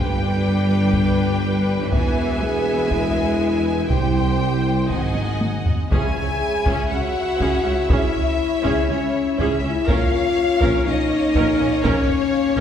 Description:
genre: cinematic, epic orchestral film score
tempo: 121 BPM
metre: 4/4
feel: straight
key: unclear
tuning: A4 = 440 Hz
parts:
  - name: rich studio violin section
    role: melody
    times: 0.0-12.6 s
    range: C#5 to G#5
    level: -30 LUFS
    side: left 4 dB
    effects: none
  - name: rich symphonic violin section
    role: second line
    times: 0.0-12.6 s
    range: B4 to G#5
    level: -28 LUFS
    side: left 3 dB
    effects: none
  - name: rich symphonic viola section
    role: accompaniment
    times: 0.0-12.6 s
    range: C#4 to Eb5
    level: -27 LUFS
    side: right 2 dB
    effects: none
  - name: clear symphonic string section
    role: sustained chords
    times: 0.0-12.6 s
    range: G3 to G5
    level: -31 LUFS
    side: equal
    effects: none
  - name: dark French horn section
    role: sustained chords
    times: 0.0-12.6 s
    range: B3 to G#4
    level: -23 LUFS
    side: left 3 dB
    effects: none
  - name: mellow tuba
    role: bass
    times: 0.0-12.6 s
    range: E1 to C#2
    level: -28 LUFS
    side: right 1 dB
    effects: none
  - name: rich symphonic cello section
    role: bass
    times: 0.0-11.9 s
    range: C#2 to B3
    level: -26 LUFS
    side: equal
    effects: none
  - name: warm symphonic double bass section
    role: bass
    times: 0.0-12.6 s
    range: Ab1 to G2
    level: -28 LUFS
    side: right 2 dB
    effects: none
  - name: taiko ensemble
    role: drums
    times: 0.9-12.6 s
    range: none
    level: -24 LUFS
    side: equal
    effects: none
  - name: timpani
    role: percussion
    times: 5.9-6.6 s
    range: C#3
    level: -32 LUFS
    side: left 1 dB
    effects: none
room: wet scoring stage reverb, RT60 1.7 s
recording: recorded in a church or concert hall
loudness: -17 LUFS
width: side -9 dB against mid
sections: 0.0-5.9 A section; 5.9-12.6 B section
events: drum fill 5.2-5.9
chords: 0.0 G; 1.9 E; 3.9 C; 4.9 Ab7; 5.9 C#m; 9.9 A#m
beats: 0.44 0.94 1.43 | 1.92 2.41 2.91 3.40 | 3.90 4.40 4.90 5.41 | 5.92 6.41 6.91 7.41 | 7.90 8.40 8.89 9.39 | 9.88 10.37 10.86 11.36 | 11.85 12.34

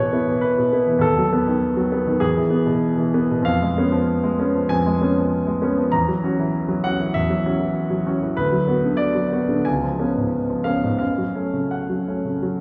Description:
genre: classical, romantic character piece for solo piano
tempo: 83-103 BPM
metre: 4/4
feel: rubato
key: unclear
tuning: A4 = 440 Hz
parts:
  - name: clear concert grand piano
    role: solo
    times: 0.0-12.6 s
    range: C#2 to A#5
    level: -21 LUFS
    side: equal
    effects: none
room: wet recital hall reverb, RT60 1.6 s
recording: heard from further back in the room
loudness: -21 LUFS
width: mono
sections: 0.0-12.6 A section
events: none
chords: 0.0 E; 1.0 B7/D#; 2.2 E; 3.5 C#7/E#; 5.9 F#7/E; 8.4 Bm/D; 9.7 C#7; 11.0 F#m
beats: 0.44 | 1.04 1.63 2.22 2.83 | 3.48 4.09 4.71 5.32 | 5.93 6.54 7.14 7.75 | 8.36 8.99 9.66 10.33 | 11.01 11.73 12.43

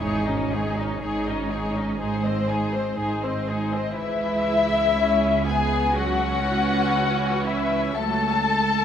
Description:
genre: classical, slow romantic movement for string orchestra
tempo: 61 BPM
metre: 4/4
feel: rubato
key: C# minor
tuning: A4 = 443 Hz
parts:
  - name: muted studio violin section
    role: melody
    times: 0.0-8.8 s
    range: B#4 to A5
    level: -25 LUFS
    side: left 5 dB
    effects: none
  - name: muted studio violin section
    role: second line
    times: 0.0-8.8 s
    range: D#4 to B#4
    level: -28 LUFS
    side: left 3 dB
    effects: none
  - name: muted studio viola section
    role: accompaniment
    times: 0.0-8.8 s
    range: E3 to D#4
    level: -28 LUFS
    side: right 3 dB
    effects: none
  - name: muted symphonic cello section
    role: bass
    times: 0.0-8.8 s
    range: C#2 to G#2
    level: -28 LUFS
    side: right 3 dB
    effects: none
  - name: muted symphonic double bass section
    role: bass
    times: 0.0-8.8 s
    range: G#1 to C#2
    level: -31 LUFS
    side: right 2 dB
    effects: none
room: moderate concert hall reverb, RT60 1.9 s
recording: none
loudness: -21 LUFS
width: side -8 dB against mid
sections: 0.0-4.0 A section; 4.0-8.8 B section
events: none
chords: 0.0 G#sus4; 2.0 G#; 4.0 C#m; 8.0 F#m/C#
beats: | 0.01 1.03 2.01 3.00 | 3.99 4.98 5.97 6.95 | 7.99

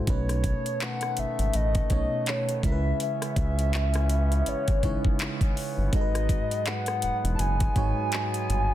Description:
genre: contemporary R&B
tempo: 82 BPM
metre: 4/4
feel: swing 58% on 16ths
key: C# minor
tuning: A4 = 440 Hz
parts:
  - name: FM electric piano with auto-pan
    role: accompaniment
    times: 0.0-8.7 s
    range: G#2 to C#5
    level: -32 LUFS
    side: right 1 dB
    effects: none
  - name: hollow clarinet-like synth lead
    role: melody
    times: 0.1-8.7 s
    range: C#5 to A5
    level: -30 LUFS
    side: left 1 dB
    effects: chorus, phaser, digital delay
  - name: mellow brass ensemble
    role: sustained chords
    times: 0.1-8.7 s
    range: C#3 to C#4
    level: -37 LUFS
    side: left 2 dB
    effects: none
  - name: round analog bass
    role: bass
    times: 0.1-8.7 s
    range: E1 to C#2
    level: -26 LUFS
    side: equal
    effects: none
  - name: smooth R&B drum kit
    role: drums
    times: 0.1-8.7 s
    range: handclaps, hi-hat, kick drum, rim click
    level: -28 LUFS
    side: equal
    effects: soft clipping on snare
room: digital ambience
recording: dense, heavily limited modern master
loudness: -24 LUFS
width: side -13 dB against mid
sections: 0.1-8.7 A section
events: none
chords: 0.1 B9; 2.6 C#m9; 5.9 G#m7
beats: | 0.07 0.81 1.54 2.27 | 3.00 3.73 4.46 5.20 | 5.93 6.66 7.39 8.12

